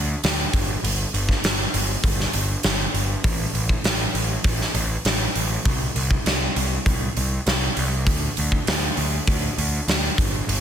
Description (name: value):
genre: hard rock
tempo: 99 BPM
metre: 4/4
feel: straight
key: unclear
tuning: A4 = 440 Hz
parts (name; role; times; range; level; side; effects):
- fuzz picked electric bass; bass; 0.0-10.6 s; G1 to D2; -24 LUFS; equal; overdrive
- big rock drum kit; drums; 0.2-10.6 s; hi-hat, kick drum, snare drum; -21 LUFS; equal; none
room: little or no reverb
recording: dense, heavily limited modern master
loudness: -20 LUFS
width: side -9 dB against mid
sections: 0.0-10.6 A section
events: none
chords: none